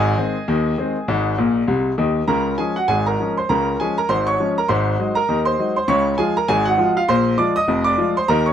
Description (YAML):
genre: ragtime piano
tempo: 100 BPM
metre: 2/4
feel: swing 59% on 16ths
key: Db major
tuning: A4 = 441 Hz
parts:
  - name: bright grand piano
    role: solo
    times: 0.0-8.5 s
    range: F1 to Eb6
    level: -16 LUFS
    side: equal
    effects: none
room: light reverb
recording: none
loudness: -17 LUFS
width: side -9 dB against mid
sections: 0.0-2.3 A section; 2.3-8.5 B section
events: grand piano fill 1.4-2.3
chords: 0.0 Ab; 2.3 Db; 4.7 Ab7; 5.9 Db; 7.1 Bb7